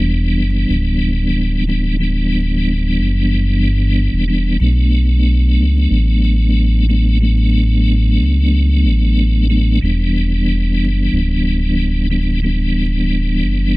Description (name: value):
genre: trip hop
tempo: 92 BPM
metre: 4/4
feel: swing 53% on 16ths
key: unclear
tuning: A4 = 439 Hz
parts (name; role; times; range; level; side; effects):
- tonewheel organ; accompaniment; 0.0-13.8 s; E3 to D4; -18 LUFS; equal; chorus vibrato, fast rotary speaker, tremolo
- round analog bass; bass; 0.0-13.8 s; D1 to C#2; -14 LUFS; equal; none
room: digital ambience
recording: dark, warm production, vinyl crackle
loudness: -13 LUFS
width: side -21 dB against mid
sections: 0.0-13.8 A section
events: none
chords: 0.0 Em7; 4.6 Bm7; 9.8 Em7